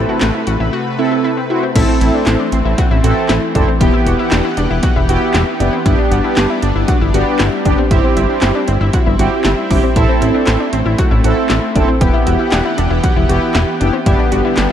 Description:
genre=synth-pop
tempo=117 BPM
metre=4/4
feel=straight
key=unclear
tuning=A4 = 440 Hz
part: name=analog synth brass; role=accompaniment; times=0.0-14.7 s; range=B3 to A4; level=-18 LUFS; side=right 2 dB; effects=chorus
part: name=lush unison pad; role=sustained chords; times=0.0-14.7 s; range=C3 to F#5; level=-20 LUFS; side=equal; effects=chorus
part: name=analog pluck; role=arpeggios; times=0.0-14.6 s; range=C4 to G4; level=-21 LUFS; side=left 2 dB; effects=chorus, analog delay
part: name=fat analog bass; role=bass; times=0.0-14.7 s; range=E1 to A1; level=-16 LUFS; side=equal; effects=none
part: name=punchy analog drum machine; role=drums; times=0.2-14.7 s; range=crash cymbal, handclaps, hi-hat, kick drum, snare drum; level=-16 LUFS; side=equal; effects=none
room=light reverb, digital ambience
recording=dark, warm production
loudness=-11 LUFS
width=side -10 dB against mid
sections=0.0-1.8 A section; 1.8-14.7 B section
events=none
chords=0.0 Amadd9; 1.8 Am; 3.8 Emadd9; 5.9 G; 7.9 C/G; 10.0 Am; 12.0 Emadd9; 14.1 G

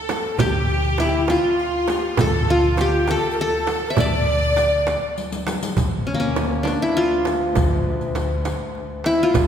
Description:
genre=Arabic maqam ensemble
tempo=67 BPM (dotted quarters)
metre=6/8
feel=straight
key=D maqam nahawand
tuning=A4 = 441 Hz
part: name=qanun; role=melody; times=0.0-9.5 s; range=Bb3 to E5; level=-21 LUFS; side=left 1 dB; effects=none
part: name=clear studio violin section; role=second line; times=0.0-5.2 s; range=F4 to D5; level=-26 LUFS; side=right 1 dB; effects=none
part: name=breathy mellow ney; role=second line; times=0.1-5.2 s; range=E4 to D5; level=-25 LUFS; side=left 2 dB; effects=none
part: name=darbuka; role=percussion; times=0.1-9.5 s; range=none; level=-27 LUFS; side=right 1 dB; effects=none
part: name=frame drum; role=percussion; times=0.1-9.5 s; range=none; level=-28 LUFS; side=right 4 dB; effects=none
part: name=riq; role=percussion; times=0.1-9.5 s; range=none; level=-33 LUFS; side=left 2 dB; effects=none
part: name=upright bass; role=bass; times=0.4-9.5 s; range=D2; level=-25 LUFS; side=right 1 dB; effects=none
part: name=dark cello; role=drone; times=5.8-9.5 s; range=D2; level=-30 LUFS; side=left 2 dB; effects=none
room=wet concert hall reverb, RT60 2.0 s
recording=recorded in a church or concert hall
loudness=-18 LUFS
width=side -8 dB against mid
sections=0.0-5.8 A section; 5.8-9.5 B section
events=drum fill 5.2-5.8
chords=none

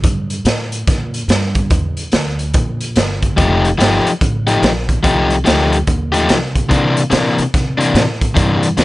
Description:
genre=electric blues shuffle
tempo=144 BPM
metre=4/4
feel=swing 63% on 8ths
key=unclear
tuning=A4 = 440 Hz
part: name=upright bass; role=bass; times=0.0-8.8 s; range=F1 to C3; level=-19 LUFS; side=equal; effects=none
part: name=raw garage drum kit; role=drums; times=0.0-8.8 s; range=hi-hat, kick drum, snare drum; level=-16 LUFS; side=equal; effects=none
part: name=overdriven semi-hollow guitar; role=riff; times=3.4-8.8 s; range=C3 to G4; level=-14 LUFS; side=left 2 dB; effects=none
room=little or no reverb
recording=nothing above 10.6 kHz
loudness=-12 LUFS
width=side -18 dB against mid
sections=0.0-8.8 A section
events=none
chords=0.0 C9 (rootless); 3.4 F9; 6.7 C9

